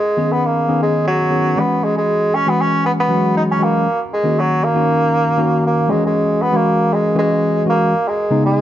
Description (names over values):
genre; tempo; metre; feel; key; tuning
pop; 118 BPM; 4/4; swing 54% on 16ths; unclear; A4 = 440 Hz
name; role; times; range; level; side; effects
warm bassoon; melody; 0.0-8.6 s; F#3 to D#4; -16 LUFS; right 1 dB; none
mellow tine electric piano; accompaniment; 0.2-8.6 s; C#3 to G#4; -17 LUFS; left 1 dB; analog chorus
room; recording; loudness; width
light reverb, small room ambience; nothing above 7.6 kHz; -14 LUFS; side -12 dB against mid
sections
0.0-8.6 A section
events
none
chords
0.0 B69; 1.6 E69; 3.9 D#m7; 5.9 E69; 7.9 B69